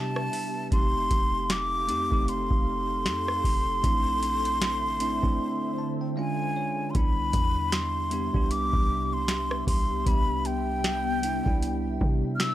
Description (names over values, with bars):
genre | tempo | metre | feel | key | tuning
contemporary R&B | 77 BPM | 4/4 | swing 58% on 16ths | C major | A4 = 439 Hz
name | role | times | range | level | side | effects
breathy concert flute | melody | 0.0-12.5 s | G5 to F6 | -28 LUFS | left 1 dB | none
bell-like tine electric piano | accompaniment | 0.0-12.5 s | G3 to A5 | -32 LUFS | right 1 dB | none
glassy FM pad | sustained chords | 0.0-12.5 s | C3 to F5 | -36 LUFS | left 1 dB | ensemble chorus, built-in reverb, phaser, sidechain pumping
warm 808-style bass | bass | 0.0-12.5 s | F1 to C3 | -32 LUFS | equal | none
booming analog drum machine | drums | 0.2-12.5 s | hi-hat, kick drum, rim click, snare drum | -26 LUFS | equal | none
room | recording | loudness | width
digital ambience | dry, gritty hardware recording | -24 LUFS | side -14 dB against mid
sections
0.0-6.9 A section; 6.9-12.5 A section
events
break 5.4-6.9; tine electric piano fill 5.4-6.9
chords
0.0 Cmaj7; 0.7 F9; 3.8 Bbmaj9#11; 6.2 Bdim7; 6.9 Cmaj7